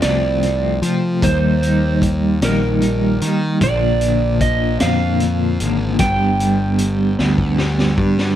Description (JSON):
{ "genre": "psychedelic rock", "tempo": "50 BPM (dotted quarters)", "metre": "6/8", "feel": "straight", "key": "unclear", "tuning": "A4 = 440 Hz", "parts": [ { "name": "electric slide guitar", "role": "melody", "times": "0.0-7.5 s", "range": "Bb4 to G5", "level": "-22 LUFS", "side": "right 4 dB", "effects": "slapback echo" }, { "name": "twelve-string electric guitar", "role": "riff", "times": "0.0-8.4 s", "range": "F2 to Eb4", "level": "-18 LUFS", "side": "equal", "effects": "tremolo" }, { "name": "fuzz picked electric bass", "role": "bass", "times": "0.0-8.3 s", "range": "G1 to F3", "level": "-19 LUFS", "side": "equal", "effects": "overdrive" }, { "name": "raw garage drum kit", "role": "drums", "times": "0.0-8.4 s", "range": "hi-hat, kick drum, snare drum", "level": "-22 LUFS", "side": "left 1 dB", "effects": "none" } ], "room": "little or no reverb", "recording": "dry, close 1970s-style studio recording, faint mains hum", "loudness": "-14 LUFS", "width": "side -11 dB against mid", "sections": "0.0-8.4 A section", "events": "drum fill 7.2-8.4", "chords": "0.0 F; 1.2 Eb; 3.6 Bb; 6.0 G" }